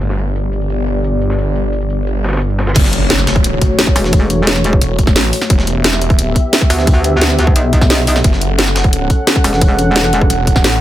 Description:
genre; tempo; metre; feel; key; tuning
dark technical drum and bass; 175 BPM; 4/4; straight; F# phrygian; A4 = 440 Hz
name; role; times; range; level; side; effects
dark analog pad; sustained chords; 0.0-10.8 s; A3 to F#5; -19 LUFS; left 1 dB; chorus, sidechain pumping
snarling distorted saw bass; bass; 0.0-10.8 s; E1 to A1; -16 LUFS; equal; distortion, overdrive, sidechain pumping
breakbeat sampler-style drum kit; drums; 0.0-10.8 s; hi-hat, snare drum; -23 LUFS; equal; none
drum and bass drum kit; drums; 2.8-10.7 s; crash cymbal, hi-hat, snare drum; -15 LUFS; equal; low-pass filter on hats, low-pass filter on cymbals, low-pass filter on snare
electronic kick drum; drums; 2.8-10.6 s; none; -12 LUFS; equal; overdrive
impact; sound effects; 2.8-4.1 s; none; -20 LUFS; equal; none
metallic wobble bass; bass; 4.0-10.3 s; E1 to D2; -14 LUFS; equal; chorus, tube saturation
room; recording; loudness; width
little or no reverb; none; -11 LUFS; side -13 dB against mid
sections
0.0-2.8 A section; 2.8-10.8 B section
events
drop 2.8-10.8; impact 2.8-4.1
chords
0.0 G; 2.8 F#m; 5.5 Em; 8.2 F#m

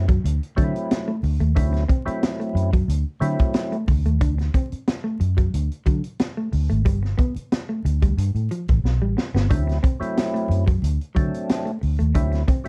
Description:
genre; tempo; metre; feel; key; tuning
funk; 91 BPM; 4/4; straight; D mixolydian; A4 = 440 Hz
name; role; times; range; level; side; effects
percussive tonewheel organ; stabs; 0.0-3.8, 9.5-12.7 s; F#3 to E4; -29 LUFS; equal; overdrive, slow rotary speaker
vintage muted fingered electric bass; bass; 0.0-12.4 s; G1 to D3; -23 LUFS; equal; none
electric guitar through a small old amp; riff; 0.1-12.6 s; F3 to D4; -31 LUFS; equal; none
vintage drum kit; drums; 0.1-12.7 s; hi-hat, kick drum, snare drum; -23 LUFS; equal; none
room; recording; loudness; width
little or no reverb; dark, warm production, vinyl crackle; -22 LUFS; mono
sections
0.0-12.7 A section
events
drum fill 8.8-9.5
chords
0.0 D9; 6.9 Gadd9; 9.5 D9

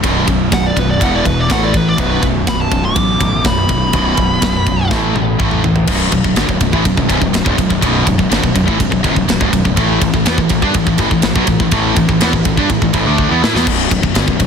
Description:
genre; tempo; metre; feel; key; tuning
heavy metal; 123 BPM; 4/4; straight; B minor; A4 = 439 Hz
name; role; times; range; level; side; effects
high-gain distorted guitar; riff; 0.0-14.5 s; B1 to E4; -18 LUFS; left 11 dB; distortion
high-gain distorted guitar; riff; 0.0-13.7 s; B1 to E4; -19 LUFS; right 10 dB; distortion
overdriven semi-hollow guitar; riff; 0.0-14.5 s; B1 to E4; -20 LUFS; equal; none
fuzz fingered electric bass; bass; 0.0-14.5 s; B0 to A2; -20 LUFS; equal; overdrive
tight metal drum kit; drums; 0.0-14.5 s; crash cymbal, kick drum, ride cymbal, snare drum, toms; -17 LUFS; equal; soft clipping on kick
high-gain lead guitar; melody; 0.5-4.9 s; B4 to D6; -19 LUFS; equal; distortion, ping-pong delay
room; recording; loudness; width
light reverb; dense, heavily limited modern master; -11 LUFS; side -7 dB against mid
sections
0.0-5.9 A section; 5.9-13.7 B section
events
lead electric guitar solo 0.0-5.9; drum fill 4.9-5.9, 13.2-13.7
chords
0.0 B5; 1.0 E5; 1.5 A5; 2.0 B5; 4.9 A5; 5.9 Bm; 9.8 A5; 13.7 Bm

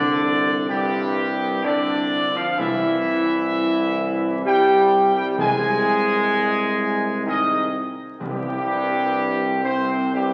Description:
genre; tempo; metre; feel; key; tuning
classical; 64 BPM; 3/4; straight; C major; A4 = 440 Hz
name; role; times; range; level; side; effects
clear trumpet section; melody; 0.0-10.3 s; G4 to Ab5; -25 LUFS; equal; none
clear French horn section; sustained chords; 0.0-10.3 s; G3 to Ab4; -27 LUFS; equal; none
warm trombone section; sustained chords; 0.0-10.3 s; G2 to Ab3; -28 LUFS; equal; none
warm tuba; bass; 0.0-10.3 s; C2; -29 LUFS; equal; none
timpani; percussion; 0.0-9.6 s; C3; -38 LUFS; equal; none
room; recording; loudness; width
wet concert hall reverb, RT60 2.0 s; very old 78 rpm record, vinyl crackle; -21 LUFS; mono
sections
0.0-10.3 A section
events
none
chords
none

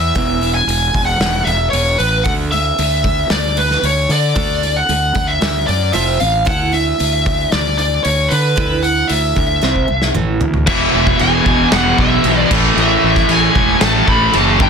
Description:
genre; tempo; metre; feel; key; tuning
quiet-loud alternative rock; 114 BPM; 4/4; straight; unclear; A4 = 440 Hz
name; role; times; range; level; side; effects
bluesy overdriven lead guitar; melody; 0.0-14.7 s; B4 to B5; -16 LUFS; equal; distortion, slapback echo
picked steel-string acoustic guitar; arpeggios; 0.0-10.7 s; E2 to F4; -24 LUFS; right 8 dB; none
fuzz fingered electric bass; bass; 0.0-14.7 s; E1 to D3; -18 LUFS; equal; overdrive
loose indie drum kit; drums; 0.2-14.7 s; crash cymbal, hi-hat, kick drum, snare drum, toms; -19 LUFS; equal; none
distorted electric guitar; riff; 10.7-14.7 s; E2 to A3; -19 LUFS; left 15 dB; overdrive
scooped high-gain guitar; riff; 10.7-14.7 s; E2 to A3; -19 LUFS; left 1 dB; distortion
thick fuzz guitar; riff; 10.7-14.7 s; E2 to A3; -19 LUFS; right 13 dB; distortion
room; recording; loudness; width
light reverb; dense, heavily limited modern master; -12 LUFS; side -6 dB against mid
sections
0.0-10.7 A section; 10.7-14.7 B section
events
drum fill 9.6-10.7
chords
0.0 E; 2.3 Dsus2; 5.9 F5; 6.5 Dsus2; 9.6 C5; 10.2 A5; 10.7 E5; 12.5 A5

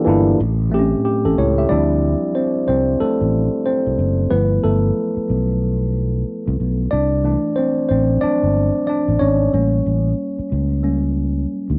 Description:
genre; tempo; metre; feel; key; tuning
R&B, neo-soul; 92 BPM; 4/4; swing 62% on 16ths; D minor; A4 = 441 Hz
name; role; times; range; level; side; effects
tine electric piano; accompaniment; 0.0-11.8 s; A2 to E5; -20 LUFS; equal; plate reverb
sustaining fretless electric bass; bass; 0.1-11.8 s; F#1 to D2; -21 LUFS; equal; subtle chorus
room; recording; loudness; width
light reverb; none; -18 LUFS; mono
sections
0.0-1.7 A section; 1.7-11.8 B section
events
tine electric piano solo 1.7-11.8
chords
0.4 A7; 1.7 Dm11; 4.3 G13; 6.9 C69; 9.5 A7b9

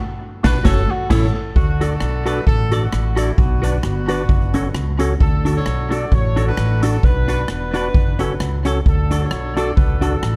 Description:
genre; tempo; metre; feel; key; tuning
ska; 132 BPM; 4/4; swing 55% on 8ths; D major; A4 = 441 Hz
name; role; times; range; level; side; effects
clean electric guitar; accompaniment; 0.4-10.3 s; C#4 to D5; -28 LUFS; equal; spring reverb
percussive tonewheel organ; stabs; 0.4-10.2 s; C#4 to D5; -30 LUFS; equal; fast rotary speaker
upright bass; bass; 0.4-10.4 s; E1 to D2; -22 LUFS; equal; none
street-band drum kit; drums; 0.4-10.3 s; crash cymbal, hi-hat, kick drum, rim click, snare drum; -21 LUFS; equal; none
warm tenor saxophone; melody; 0.5-1.6 s; F#4 to B4; -29 LUFS; equal; analog delay
warm horn section; melody; 1.6-10.4 s; A3 to D5; -28 LUFS; equal; analog delay
room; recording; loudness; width
small room ambience; dark, warm production; -18 LUFS; mono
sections
0.0-1.6 A section; 1.6-10.4 B section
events
band accent 0.0-1.6; tenor saxophone solo 0.0-1.6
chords
0.0 Bm; 0.6 F#m; 1.1 A; 1.6 D; 3.4 Bm; 4.3 F#m; 5.2 D; 7.0 Bm; 8.0 F#m; 8.9 D

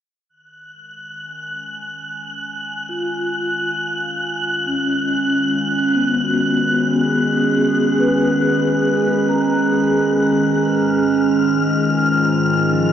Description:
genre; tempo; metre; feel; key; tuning
ambient; 70 BPM; 3/4; straight; G# dorian; A4 = 440 Hz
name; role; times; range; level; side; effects
warbly tape-like pad; sustained chords; 2.2-12.9 s; G#2 to G#5; -19 LUFS; right 2 dB; chorus, built-in reverb, shimmer reverb
wind-like tuned noise texture; texture; 0.7-12.9 s; E#6 to F#6; -22 LUFS; left 1 dB; built-in reverb, shimmer reverb
vibraphone with soft mallets; arpeggios; 2.9-12.9 s; E#3 to A#5; -21 LUFS; left 2 dB; diffuse ambient delay, shimmer reverb
room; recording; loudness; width
wet lush hall reverb, RT60 2.6 s; dark, warm production; -15 LUFS; side -9 dB against mid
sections
0.3-12.9 A section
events
fade-in on ambient pad 0.3-12.9; fade-in on vibraphone 0.3-12.9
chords
0.3 G#m7; 10.6 C#69/G#

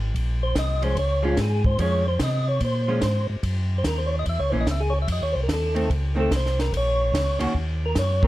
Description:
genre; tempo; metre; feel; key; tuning
soul jazz organ trio; 146 BPM; 4/4; swing 65% on 8ths; Bb minor; A4 = 442 Hz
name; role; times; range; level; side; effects
mellow tonewheel organ; bass; 0.0-8.3 s; Ab1 to C3; -24 LUFS; equal; slow rotary speaker
compact cocktail drum kit; drums; 0.1-8.3 s; hi-hat, kick drum, ride cymbal, snare drum; -29 LUFS; equal; none
percussive tonewheel organ; melody; 0.4-8.3 s; F4 to Fb5; -26 LUFS; equal; slow rotary speaker, plate reverb
archtop guitar, miked and amplified; accompaniment; 0.8-8.3 s; Eb3 to Gb4; -27 LUFS; right 1 dB; none
room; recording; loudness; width
light reverb; dark, warm production; -21 LUFS; side -16 dB against mid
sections
0.0-8.3 A section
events
tonewheel organ solo 0.0-8.3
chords
0.1 Bbm7; 3.4 Gb7; 5.1 F7; 6.7 Bbm; 7.5 Ebm

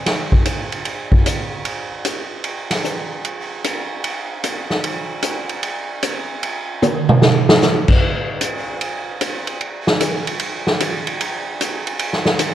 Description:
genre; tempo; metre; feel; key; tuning
jazz; 151 BPM; 4/4; swing 67% on 8ths; none; none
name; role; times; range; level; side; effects
swinging big-band drum kit; drums; 0.1-12.5 s; crash cymbal, hi-hat, kick drum, ride cymbal, snare drum, toms; -17 LUFS; equal; none
room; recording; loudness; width
light reverb; worn, warbling old tape, cassette tape, warbly pitch drift; -17 LUFS; side -11 dB against mid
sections
0.0-8.0 A section; 8.0-12.5 B section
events
drum fill 6.8-7.6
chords
none

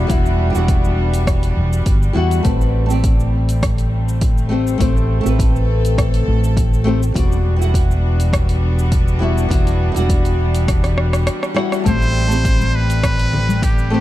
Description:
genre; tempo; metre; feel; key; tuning
sunset chillout; 102 BPM; 4/4; straight; A minor; A4 = 440 Hz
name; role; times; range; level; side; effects
flamenco guitar; accompaniment; 0.0-14.0 s; G3 to F#5; -22 LUFS; moving between left 4 dB and right 3 dB; auto-pan, digital delay
clear studio string section; sustained chords; 0.0-14.0 s; E3 to A4; -26 LUFS; equal; none
fretless electric bass; bass; 0.0-14.0 s; E1 to E2; -17 LUFS; equal; tube saturation
deep house drum kit; drums; 0.1-13.9 s; hi-hat, rim click, shaker; -26 LUFS; equal; overdrive
electronic kick drum; drums; 0.1-13.8 s; none; -18 LUFS; equal; overdrive
trumpet with straight mute; melody; 11.9-14.0 s; G4 to C5; -22 LUFS; equal; digital delay
congas; percussion; 11.9-13.6 s; none; -23 LUFS; left 4 dB; none
room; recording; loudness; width
little or no reverb; dark, warm production; -14 LUFS; side -15 dB against mid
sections
0.0-14.0 A section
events
drum fill 10.7-11.9; break 11.3-11.9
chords
0.0 Em9; 2.5 Am9; 7.2 Em9; 11.9 Am9

